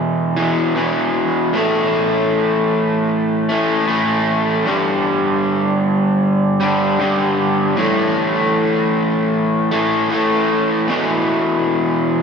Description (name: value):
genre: rock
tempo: 77 BPM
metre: 4/4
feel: straight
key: unclear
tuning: A4 = 439 Hz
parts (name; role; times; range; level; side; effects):
- overdriven electric guitar; solo; 0.0-12.2 s; E2 to A3; -15 LUFS; equal; none
room: wet cathedral reverb, RT60 5.0 s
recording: recorded in a church or concert hall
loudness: -15 LUFS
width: side -6 dB against mid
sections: 0.0-7.8 A section; 7.8-12.2 B section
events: none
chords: 0.0 E5; 1.5 A5; 4.7 G5; 7.8 A5; 10.9 E5